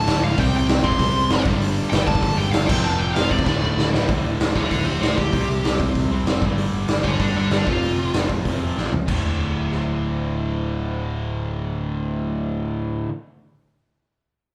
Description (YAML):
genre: punk rock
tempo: 192 BPM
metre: 4/4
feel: straight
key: D minor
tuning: A4 = 440 Hz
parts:
  - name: high-gain lead guitar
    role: melody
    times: 0.0-8.3 s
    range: F4 to C6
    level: -27 LUFS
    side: equal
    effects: distortion
  - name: crunchy overdriven guitar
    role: riff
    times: 0.0-4.1 s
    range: D2 to C4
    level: -31 LUFS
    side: equal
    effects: none
  - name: distorted electric guitar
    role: riff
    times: 0.0-13.1 s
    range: D2 to C4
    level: -29 LUFS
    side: equal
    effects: distortion
  - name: sludgy distorted guitar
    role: riff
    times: 0.0-13.1 s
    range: D2 to C4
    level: -30 LUFS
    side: equal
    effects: overdrive
  - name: picked electric bass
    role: bass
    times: 0.1-13.1 s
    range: D1 to D2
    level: -29 LUFS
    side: equal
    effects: none
  - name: raw garage drum kit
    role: drums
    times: 0.1-9.8 s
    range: crash cymbal, hi-hat, kick drum, rim click, snare drum, toms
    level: -25 LUFS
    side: equal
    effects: none
room: moderate large studio reverb, RT60 1.1 s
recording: band playing live in one room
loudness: -21 LUFS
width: mono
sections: 0.0-4.1 A section; 4.1-9.1 B section; 9.1-11.6 C section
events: drum fill 3.5-4.1, 8.8-9.1; lead electric guitar solo 4.1-9.1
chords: 0.4 C5; 1.5 G5; 2.7 F5; 3.5 D5; 5.3 C5; 6.4 G5; 7.7 F5; 9.1 D5